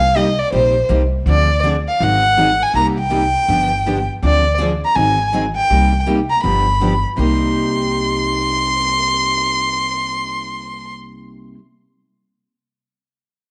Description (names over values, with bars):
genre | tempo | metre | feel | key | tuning
acoustic string swing (jazz manouche) | 162 BPM | 4/4 | swing 63% on 8ths | C minor | A4 = 441 Hz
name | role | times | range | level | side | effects
warm violin | melody | 0.0-10.9 s | C5 to C6 | -19 LUFS | equal | none
upright bass | bass | 0.0-11.5 s | G1 to D2 | -22 LUFS | equal | none
picked steel-string acoustic guitar | accompaniment | 0.1-11.6 s | C3 to Ab4 | -26 LUFS | equal | none
picked steel-string acoustic guitar | accompaniment | 0.1-11.6 s | C3 to Ab4 | -27 LUFS | equal | none
room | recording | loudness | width
moderate echo chamber reverb, RT60 1.5 s, studio reverb | nothing above 10.5 kHz | -16 LUFS | mono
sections
0.0-1.3 A section; 1.3-7.2 B section; 7.2-10.1 C section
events
none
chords
0.0 Cm7; 1.3 Dm7b5; 2.0 Ab7; 2.8 Cm7; 3.5 G7; 4.2 Dm7b5; 5.0 Ab7; 5.7 Cm7; 6.4 G7; 7.2 Cm7